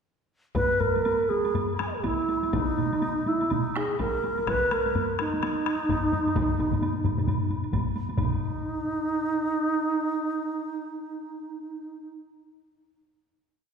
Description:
japanese traditional, taiko drum ensemble; 121-146 BPM; 4/4; swing 60% on 16ths; Eb miyako bushi; A4 = 438 Hz
taiko ensemble; percussion; 0.5-8.4 s; -35 LUFS; left 1 dB
mellow reedy alto flute; melody; 0.6-12.1 s; Eb4 to Cb6; -26 LUFS; right 2 dB
solo taiko drums; percussion; 0.6-8.6 s; -31 LUFS; left 5 dB
taiko ensemble; percussion; 0.6-8.4 s; -34 LUFS; equal
woodblock; percussion; 0.6-8.4 s; -39 LUFS; equal
taiko ensemble; percussion; 2.5-8.6 s; -32 LUFS; right 3 dB
wet concert hall reverb, RT60 2.0 s; heard from further back in the room; -24 LUFS; side -6 dB against mid
0.6-8.2 A section; 8.2-11.6 final note
speeding up 0.6-11.6
| 0.56 1.05 1.55 2.04 | 2.53 3.02 3.51 3.99 | 4.47 4.95 5.42 5.89 | 6.36 6.82 7.28 7.73 | 8.18 8.62 9.06 9.50 | 9.93 10.35 10.78 11.19

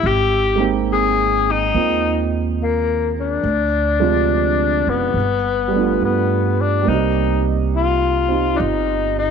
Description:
jazz ballad; 70 BPM; 4/4; swing 67% on 8ths; A4 = 439 Hz
breathy tenor saxophone; melody; 0.0-9.3 s; Bb3 to Ab4; -18 LUFS; left 7 dB
warm grand piano; accompaniment; 0.0-9.3 s; C3 to G5; -21 LUFS; right 12 dB
upright bass; bass; 0.0-9.3 s; Gb1 to G2; -22 LUFS; right 2 dB
moderate echo chamber reverb, RT60 2.3 s; 1960s-style stereo with parts hard left and right; -16 LUFS; side -6 dB against mid
0.0-9.3 A section
0.0 Abmaj9; 3.4 Dm7b5; 5.1 G7; 6.9 Cm7
| 0.02 0.88 1.73 2.58 | 3.43 4.29 5.15 6.01 | 6.88 7.74 8.60

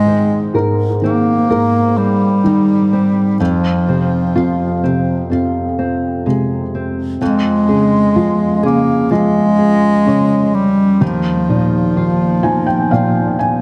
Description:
pop; 63 BPM; 4/4; straight; Ab major; A4 = 440 Hz
mellow bass clarinet; melody; 0.0-13.6 s; F3 to Bb3; -16 LUFS; equal; analog delay
felt-muted upright piano; accompaniment; 0.0-13.6 s; Eb2 to Ab5; -20 LUFS; equal; analog delay
nylon-string guitar; arpeggios; 0.0-13.6 s; F2 to Bb4; -23 LUFS; equal
wet echo chamber reverb, RT60 2.2 s; echo-heavy mix; -14 LUFS; mono
0.0-13.6 A section
felt piano fill 12.0-13.6
0.0 Abadd9; 3.4 Fm; 7.2 Bbm7/F (rootless); 11.0 Ebsus2
0.54 1.50 2.45 | 3.40 4.35 5.30 6.26 | 7.21 8.16 9.11 10.07 | 11.02 11.97 12.92

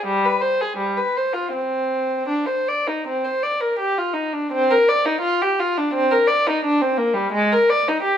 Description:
classical, baroque-style suite movement for unaccompanied violin; 78-89 BPM; 4/4; rubato; C minor; A4 = 442 Hz
dark violin; solo; 0.0-8.2 s; G3 to D5; -18 LUFS; equal
light reverb; -18 LUFS; side -9 dB against mid
0.0-4.5 A section; 4.5-8.2 B section
0.06 0.78 | 1.53 2.29 3.05 3.79 | 4.53 5.23 5.92 6.62 | 7.33 8.02

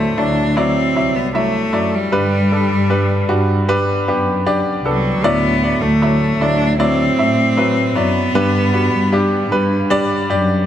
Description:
pop ballad; 77 BPM; 4/4; straight; A4 = 442 Hz
clear cello; melody; 0.0-9.5 s; F#3 to D4; -18 LUFS; equal
bright grand piano; accompaniment; 0.0-10.7 s; G2 to E5; -17 LUFS; equal
dark studio cello section; bass; 0.0-10.7 s; C2 to A2; -19 LUFS; equal
light reverb, small room ambience; -14 LUFS; side -10 dB against mid
0.0-10.7 A section
0.0 Dadd9; 2.1 G; 5.2 Dadd9; 8.4 G
0.57 1.35 | 2.13 2.91 3.69 4.46 | 5.24 6.02 6.80 7.58 | 8.36 9.14 9.92

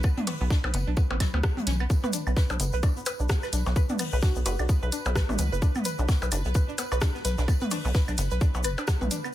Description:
minimal techno; 129 BPM; 4/4; swing 58% on 16ths; B minor; A4 = 441 Hz
string-like resonator pluck; riff; 0.0-9.3 s; F#3 to B4; -34 LUFS; equal; chorus, sidechain pumping, ping-pong delay
rubbery square bass; bass; 0.0-9.1 s; F#1 to D2; -26 LUFS; equal; tube saturation, sidechain pumping
electronic kick drum; drums; 0.0-9.0 s; -24 LUFS; equal
unplugged drum kit; drums; 0.0-9.2 s; hi-hat, snare drum, tambourine; -41 LUFS; left 1 dB; sidechain pumping on hats, high-pass filter on hats, high-pass filter on snare, sidechain pumping on perc, high-pass filter on perc, high-pass filter on room
electronic claves, toms and percussion blips; percussion; 0.0-9.3 s; -33 LUFS; left 1 dB; overdrive
bubbling stepped-filter texture; texture; 0.0-9.3 s; B4; -40 LUFS; right 2 dB; chorus, built-in reverb, sidechain pumping
garage drum kit; drums; 0.3-9.2 s; hi-hat, rim click; -33 LUFS; equal
tube shaker; percussion; 1.9-9.3 s; -40 LUFS; left 6 dB
soft struck synth lead; melody; 4.2-4.7 s; F#4; -39 LUFS; right 3 dB; chorus, cassette tape, dub echo
little or no reverb; -24 LUFS; side -14 dB against mid
0.0-9.3 A section
0.0 B5
| 0.04 0.51 0.97 1.44 | 1.90 2.37 2.83 3.30 | 3.76 4.23 4.69 5.16 | 5.62 6.09 6.55 7.02 | 7.48 7.95 8.41 8.88 | 9.34

